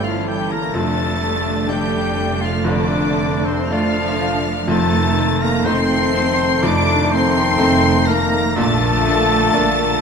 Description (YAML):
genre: classical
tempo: 62 BPM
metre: 4/4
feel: rubato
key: D minor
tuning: A4 = 441 Hz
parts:
  - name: bright baby grand piano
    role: melody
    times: 0.0-10.0 s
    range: F1 to D5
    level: -22 LUFS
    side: left 1 dB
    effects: none
  - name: warm symphonic violin section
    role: melody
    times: 0.0-10.0 s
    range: C6 to D7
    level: -26 LUFS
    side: left 4 dB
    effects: none
  - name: silver concert flute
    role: second line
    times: 0.0-10.0 s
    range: C5 to D6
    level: -28 LUFS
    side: left 3 dB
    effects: none
  - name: warm clarinet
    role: second line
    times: 0.0-10.0 s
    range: D4 to E4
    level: -28 LUFS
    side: left 5 dB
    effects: none
  - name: warm oboe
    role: second line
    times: 0.0-10.0 s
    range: C4 to D5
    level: -26 LUFS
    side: right 1 dB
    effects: none
  - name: warm symphonic violin section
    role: second line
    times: 0.0-10.0 s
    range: C5 to D6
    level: -26 LUFS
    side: left 2 dB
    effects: none
  - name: mellow bassoon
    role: accompaniment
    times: 0.0-10.0 s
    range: F3 to A3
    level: -28 LUFS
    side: left 2 dB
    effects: none
  - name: warm symphonic viola section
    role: accompaniment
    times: 0.0-9.6 s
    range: E3 to Eb4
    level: -27 LUFS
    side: right 2 dB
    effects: none
  - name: dark trombone section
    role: sustained chords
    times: 0.0-10.0 s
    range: D3 to Bb3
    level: -28 LUFS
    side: right 5 dB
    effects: none
  - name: mellow French horn section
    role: sustained chords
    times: 0.0-10.0 s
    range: C3 to D4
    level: -24 LUFS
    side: left 4 dB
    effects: none
  - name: dark symphonic double bass section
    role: bass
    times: 0.0-10.0 s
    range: F1 to Bb1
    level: -24 LUFS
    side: right 5 dB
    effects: none
  - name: rich symphonic cello section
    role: bass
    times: 0.0-10.0 s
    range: C3 to D4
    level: -24 LUFS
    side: right 2 dB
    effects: none
room: moderate concert hall reverb, RT60 2.0 s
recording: none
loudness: -15 LUFS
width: side -6 dB against mid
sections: 0.0-10.0 A section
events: none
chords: 0.0 A7/G; 0.8 Dm/F; 4.7 F7; 8.6 Bbmaj7